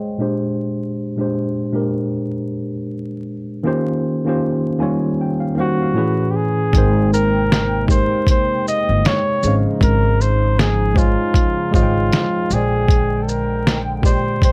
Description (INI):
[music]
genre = lo-fi hip hop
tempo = 78 BPM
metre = 4/4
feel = swing 60% on 16ths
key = Ab major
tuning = A4 = 442 Hz
[part]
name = mellow tine electric piano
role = accompaniment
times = 0.0-14.5 s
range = A2 to Ab5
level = -23 LUFS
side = equal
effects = cassette tape, low-pass filter, plate reverb
[part]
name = mellow flugelhorn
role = melody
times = 5.6-14.5 s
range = F4 to Eb5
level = -23 LUFS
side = equal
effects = low-pass filter, plate reverb
[part]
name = hollow soft pad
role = sustained chords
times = 6.7-14.5 s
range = C3 to G5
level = -30 LUFS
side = equal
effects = chorus, low-pass filter
[part]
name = upright bass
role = bass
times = 6.7-14.2 s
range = G1 to Bb1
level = -22 LUFS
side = equal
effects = none
[part]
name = lo-fi sampler-style drum kit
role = drums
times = 6.7-14.5 s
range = hi-hat, kick drum, shaker, snare drum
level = -18 LUFS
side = equal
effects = none
[sound]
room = light reverb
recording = vinyl crackle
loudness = -18 LUFS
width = mono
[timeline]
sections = 0.0-6.7 A section; 6.7-14.5 B section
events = filter sweep on tine electric piano 0.0-6.7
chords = 0.2 Bb13; 3.7 Eb13; 6.0 Amaj9; 6.7 Abmaj9; 9.4 Dbmaj9/Ab; 12.5 Bb13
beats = | 0.58 1.34 2.11 2.88 | 3.65 4.42 5.19 5.96 | 6.73 7.50 8.27 9.04 | 9.81 10.58 11.35 12.11 | 12.88 13.65 14.42